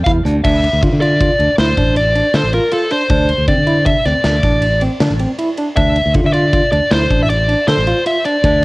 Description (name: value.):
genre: progressive instrumental, band music in an uneven meter.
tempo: 158 BPM.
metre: 7/4.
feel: straight.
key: D minor.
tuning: A4 = 439 Hz.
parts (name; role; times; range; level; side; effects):
dark smooth lead guitar; melody; 0.0-8.6 s; A4 to F5; -16 LUFS; equal; overdrive, cassette tape, analog delay.
modern bright fingered electric bass; bass; 0.0-8.6 s; A1 to D3; -16 LUFS; equal; none.
overdriven tine electric piano; arpeggios; 0.1-8.6 s; C4 to A4; -20 LUFS; right 1 dB; fast tremolo, cassette tape.
big rock drum kit; drums; 0.1-8.5 s; crash cymbal, hi-hat, kick drum, ride cymbal, snare drum; -19 LUFS; equal; cassette tape.
room: studio reverb.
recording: home recording on cassette.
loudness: -12 LUFS.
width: side -22 dB against mid.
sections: 0.4-8.6 A section.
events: none.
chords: 0.4 D7(no3).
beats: 0.06 | 0.44 0.82 1.20 1.58 1.96 2.35 2.73 | 3.11 3.49 3.87 4.25 4.63 5.01 5.39 | 5.77 6.15 6.54 6.92 7.30 7.68 8.06 | 8.44.